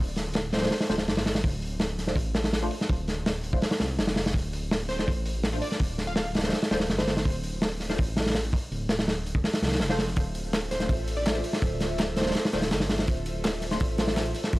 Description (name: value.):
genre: drum and bass, jungle.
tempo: 165 BPM.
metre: 4/4.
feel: straight.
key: D minor.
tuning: A4 = 440 Hz.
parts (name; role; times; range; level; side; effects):
dark detuned saw bass; bass; 0.0-14.6 s; D1 to C2; -32 LUFS; equal; none.
crunchy breakbeat drum kit; drums; 0.2-14.6 s; hi-hat, kick drum, snare drum; -26 LUFS; equal; none.
plucky unison lead; melody; 0.5-0.8, 4.9-7.3, 10.7-12.4 s; C5 to F5; -36 LUFS; right 1 dB; dub echo.
filtered dub chord stab; stabs; 0.6-13.8 s; A3 to C5; -37 LUFS; left 1 dB; phaser, lush chorus, vintage 12-bit sampler grit, dub echo.
airy breathy pad; sustained chords; 10.3-14.6 s; F4 to E5; -35 LUFS; equal; chorus.
breakbeat sampler-style drum kit; drums; 10.2-14.6 s; hi-hat, snare drum; -40 LUFS; equal; high-pass filter on snare, high-pass filter on hats.
room: studio ambience.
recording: dry, gritty hardware recording, vinyl crackle.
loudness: -24 LUFS.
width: side -20 dB against mid.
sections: 0.0-14.6 A section.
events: none.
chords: 0.0 Dm7.